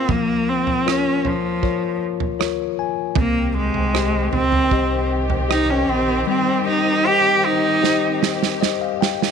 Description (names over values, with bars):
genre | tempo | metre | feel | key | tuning
pop ballad | 77 BPM | 4/4 | straight | unclear | A4 = 440 Hz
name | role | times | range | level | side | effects
clear cello | melody | 0.0-8.2 s | F3 to G4 | -19 LUFS | right 2 dB | none
bell-like tine electric piano | accompaniment | 0.0-9.3 s | F3 to Ab5 | -23 LUFS | left 15 dB | none
loose indie drum kit | drums | 0.1-9.3 s | kick drum, rim click, snare drum, toms | -23 LUFS | right 7 dB | none
warm symphonic string section | sustained chords | 3.2-9.3 s | Eb3 to G4 | -26 LUFS | left 1 dB | none
sub bass with octave | bass | 3.2-6.2 s | Bb1 to Db2 | -23 LUFS | right 1 dB | none
room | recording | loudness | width
light reverb, small room ambience | 1960s-style stereo with parts hard left and right | -17 LUFS | side -6 dB against mid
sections
0.0-9.3 A section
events
tine electric piano fill 2.0-3.2, 8.2-9.3; drum fill 7.8-9.3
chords
0.0 Bbm; 3.2 Cm